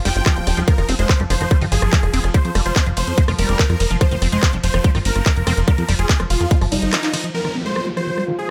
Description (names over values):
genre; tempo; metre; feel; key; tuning
psychedelic trance; 144 BPM; 4/4; straight; F minor; A4 = 439 Hz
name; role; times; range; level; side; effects
bubbling stepped-filter texture; sustained chords; 0.0-8.5 s; F3 to F4; -32 LUFS; equal; chorus, built-in reverb, sidechain pumping
dense compressed supersaw; melody; 0.1-8.5 s; Eb4 to G5; -27 LUFS; equal; phaser, sidechain pumping, tape echo
liquid acid bass; riff; 0.1-8.3 s; Eb3 to F4; -28 LUFS; equal; chorus, sidechain pumping, tape echo
plucky analog bass; bass; 0.1-6.9 s; Eb1 to F2; -22 LUFS; equal; none
garage drum kit; drums; 0.1-8.3 s; handclaps, hi-hat, ride cymbal, rim click; -26 LUFS; equal; none
electronic kick drum; drums; 0.3-6.6 s; none; -18 LUFS; equal; none
downlifter; sound effects; 7.3-8.5 s; none; -32 LUFS; equal; none
airy breathy pad; texture; 7.5-8.5 s; F4 to C5; -35 LUFS; equal; none
room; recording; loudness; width
little or no reverb; none; -18 LUFS; mono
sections
0.0-7.3 A section; 7.3-8.5 B section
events
drop 0.0-7.3; band accent 6.9; filter sweep on acid bass 7.3-8.5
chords
0.0 F5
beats
0.26 | 0.68 1.09 1.51 1.93 | 2.34 2.76 3.18 3.59 | 4.01 4.43 4.84 5.26 | 5.68 6.09 6.51 6.93 | 7.34 7.76 8.18